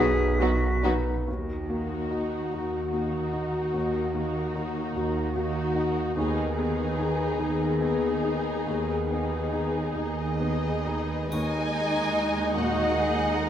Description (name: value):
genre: cinematic, emotional film score for orchestra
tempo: 43-50 BPM (dotted quarters)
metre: 6/8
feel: rubato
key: unclear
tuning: A4 = 439 Hz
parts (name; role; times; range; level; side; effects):
- mellow hollow silver concert flute; second line; 0.0-0.9 s; B6; -33 LUFS; left 2 dB; none
- warm clarinet; second line; 0.0-1.3 s; D#4 to G#4; -29 LUFS; equal; none
- warm studio violin section; second line; 0.0-13.5 s; D#4 to D#5; -32 LUFS; left 1 dB; none
- felt-muted upright piano; accompaniment; 0.0-13.5 s; B1 to B4; -32 LUFS; left 2 dB; none
- rich studio viola section; accompaniment; 0.0-13.5 s; F#3 to D#4; -33 LUFS; right 2 dB; none
- dark French horn section; sustained chords; 0.0-11.0 s; A#3 to G#4; -32 LUFS; left 4 dB; none
- rich studio double bass section; bass; 0.0-13.5 s; B1 to D#2; -32 LUFS; right 2 dB; none
- warm studio cello section; bass; 1.3-13.5 s; D#2 to D#3; -34 LUFS; right 2 dB; none
- rich studio violin section; melody; 1.7-13.5 s; A#4 to G#5; -38 LUFS; left 2 dB; none
- triangle; percussion; 11.3-12.9 s; none; -49 LUFS; left 2 dB; none
room: wet scoring stage reverb, RT60 1.5 s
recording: none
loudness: -25 LUFS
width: side -10 dB against mid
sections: 0.0-1.3 A section; 1.3-11.3 B section; 11.3-13.5 C section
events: none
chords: 0.0 B; 1.3 D#m; 6.2 G#m/D#; 11.3 D#m